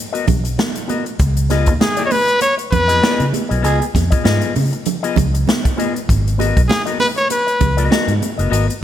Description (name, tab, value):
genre	funk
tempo	98 BPM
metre	4/4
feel	swing 56% on 16ths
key	unclear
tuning	A4 = 436 Hz
part	electric guitar with an envelope filter	accompaniment	0.1-8.7 s	B3 to D#5	-23 LUFS	left 7 dB	none
part	swinging big-band drum kit	drums	0.1-8.8 s	hi-hat, kick drum, snare drum	-19 LUFS	equal	none
part	vintage muted fingered electric bass	bass	0.3-8.7 s	F#1 to C#3	-18 LUFS	equal	none
part	congas	percussion	0.3-8.4 s	none	-24 LUFS	right 7 dB	none
part	bright trumpet	melody	1.8-7.9 s	G#4 to C#5	-16 LUFS	left 1 dB	none
part	growling trombone	second line	3.6-3.8 s	G#4	-24 LUFS	right 8 dB	none
room	light reverb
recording	none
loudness	-14 LUFS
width	side -11 dB against mid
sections	0.0-8.8 A section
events	band accent 3.6-6.1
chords	0.0 G#m9 (rootless); 1.2 C#9; 6.1 G#m9